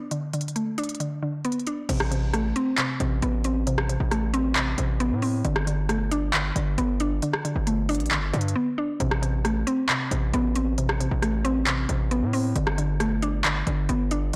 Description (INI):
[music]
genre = hip hop, trap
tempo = 135 BPM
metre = 4/4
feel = half-time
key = A minor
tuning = A4 = 440 Hz
[part]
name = mallet-like synth pluck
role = accompaniment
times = 0.0-14.4 s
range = C3 to D4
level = -29 LUFS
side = equal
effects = chorus, low-pass filter
[part]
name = trap drum kit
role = drums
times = 0.1-14.4 s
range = crash cymbal, handclaps, hi-hat, rim click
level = -31 LUFS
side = equal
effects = none
[part]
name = distorted 808-style bass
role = bass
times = 1.9-14.3 s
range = G1 to A2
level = -28 LUFS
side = equal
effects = distortion
[sound]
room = light reverb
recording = blown-out, overdriven recording, overdrive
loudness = -25 LUFS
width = mono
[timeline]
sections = 0.0-1.9 A section; 1.9-14.4 B section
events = filter sweep on synth pluck 0.0-1.9; drums muted 8.6-9.0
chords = 0.0 Bm7/D; 1.9 Amadd9; 5.4 Gadd9; 9.0 Amadd9; 12.6 Gadd9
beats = | 0.11 0.56 1.00 1.45 | 1.89 2.33 2.78 3.22 | 3.67 4.11 4.56 5.00 | 5.45 5.89 6.33 6.78 | 7.22 7.67 8.11 8.56 | 9.00 9.45 9.89 10.34 | 10.78 11.22 11.67 12.11 | 12.56 13.00 13.45 13.89 | 14.34